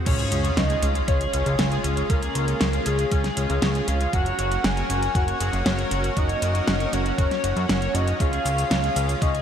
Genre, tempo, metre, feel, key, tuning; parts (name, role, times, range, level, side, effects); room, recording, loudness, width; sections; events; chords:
synthwave; 118 BPM; 4/4; straight; Db major; A4 = 438 Hz
lush unison pad; sustained chords; 0.0-9.4 s; Ab3 to Gb4; -31 LUFS; right 1 dB; chorus, sidechain pumping
soft octave-layered synth lead; melody; 0.1-9.4 s; Ab4 to Ab5; -27 LUFS; left 1 dB; chorus, phaser, digital delay
cranked stack guitar; riff; 0.1-9.4 s; Db4 to Gb5; -33 LUFS; left 4 dB; overdrive, analog chorus, digital delay
analog synth brass; stabs; 0.1-9.3 s; Db3 to Db5; -33 LUFS; equal; chorus
fat analog bass; bass; 0.1-9.4 s; Gb1 to Gb2; -25 LUFS; equal; sidechain pumping
electronic kick drum; drums; 0.1-9.3 s; -24 LUFS; equal
pop drum kit; drums; 0.1-9.4 s; cabasa, crash cymbal, hi-hat, snare drum; -27 LUFS; equal; overdrive
sub drop; sound effects; 0.1-2.1 s; -31 LUFS; equal
moderate lush hall reverb, RT60 1.8 s; bright 1980s-style digital production; -20 LUFS; side -8 dB against mid
0.1-9.4 A section
impact 0.1-2.1
0.1 Db; 4.1 Gb; 8.2 Db